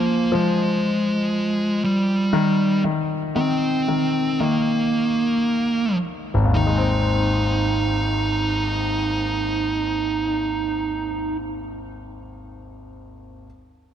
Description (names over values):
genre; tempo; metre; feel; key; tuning
pop; 55-60 BPM; 4/4; straight; Ab major; A4 = 439 Hz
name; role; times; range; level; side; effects
fuzz lead guitar; melody; 0.0-11.4 s; G3 to Eb4; -21 LUFS; right 2 dB; distortion, tape echo
clear concert grand piano; accompaniment; 0.0-13.5 s; Ab1 to C4; -24 LUFS; left 2 dB; none
room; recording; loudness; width
light reverb; dark, warm production; -19 LUFS; side -9 dB against mid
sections
0.0-6.6 A section; 6.6-10.9 B section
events
slowing down 0.0-6.6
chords
0.0 N.C.; 6.6 Ab